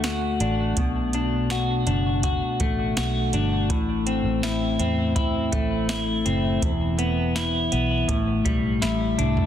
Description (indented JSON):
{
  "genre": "dream pop",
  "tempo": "82 BPM",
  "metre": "4/4",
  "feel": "straight",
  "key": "unclear",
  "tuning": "A4 = 439 Hz",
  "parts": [
    { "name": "clean electric guitar", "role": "arpeggios", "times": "0.0-9.5 s", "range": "E2 to F#4", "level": "-23 LUFS", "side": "left 2 dB", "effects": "wide subtle chorus, tape echo" },
    { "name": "vintage muted fingered electric bass", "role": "bass", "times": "0.0-9.5 s", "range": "E1 to E2", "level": "-27 LUFS", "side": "right 1 dB", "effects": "none" },
    { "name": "soft vintage rhythm box", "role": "drums", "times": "0.0-9.5 s", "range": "hi-hat, kick drum, snare drum, toms", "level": "-28 LUFS", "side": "right 1 dB", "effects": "none" }
  ],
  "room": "light reverb",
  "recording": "dense, heavily limited modern master",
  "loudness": "-21 LUFS",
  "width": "side -10 dB against mid",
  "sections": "0.0-9.5 A section",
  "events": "drum fill 8.8-9.5",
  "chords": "0.0 D; 0.8 Bm7; 3.7 Am; 6.6 E5; 8.1 A7sus4",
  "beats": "0.04 | 0.77 1.50 2.23 2.97 | 3.70 4.43 5.16 5.89 | 6.63 7.36 8.09 8.82"
}